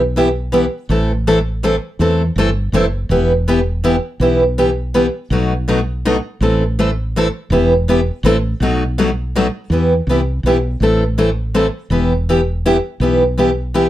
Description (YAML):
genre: acoustic string swing (jazz manouche)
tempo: 164 BPM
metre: 3/4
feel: swing 62% on 8ths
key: E minor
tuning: A4 = 440 Hz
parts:
  - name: woody fretless electric bass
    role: bass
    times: 0.0-13.9 s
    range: E1 to E2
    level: -18 LUFS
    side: equal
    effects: wide subtle chorus
  - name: picked steel-string acoustic guitar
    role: accompaniment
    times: 0.2-13.9 s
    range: B2 to A4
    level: -14 LUFS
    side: equal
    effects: none
room: light reverb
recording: dark, warm production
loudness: -14 LUFS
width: side -13 dB against mid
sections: 0.0-9.7 A section; 9.7-13.9 A section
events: none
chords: 0.0 Em; 0.9 Am; 3.1 Em; 5.3 B7; 6.4 Am; 7.5 Em; 8.2 Am; 8.6 B7; 9.7 Em; 10.8 Am; 11.9 Em